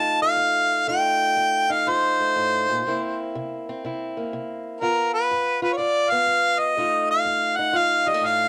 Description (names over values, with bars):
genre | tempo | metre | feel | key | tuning
acoustic country blues, solo or duo | 122 BPM | 4/4 | swing 66% on 8ths | unclear | A4 = 441 Hz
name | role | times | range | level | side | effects
warm harmonica | melody | 0.0-8.5 s | Bb4 to A5 | -22 LUFS | equal | cassette tape
fingerpicked steel-string acoustic guitar | accompaniment | 0.0-8.5 s | F2 to F4 | -31 LUFS | equal | cassette tape
room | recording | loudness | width
light reverb | home recording on cassette | -22 LUFS | mono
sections
0.0-8.5 A section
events
none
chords
0.0 F7; 2.8 C7; 4.8 G7; 6.8 F7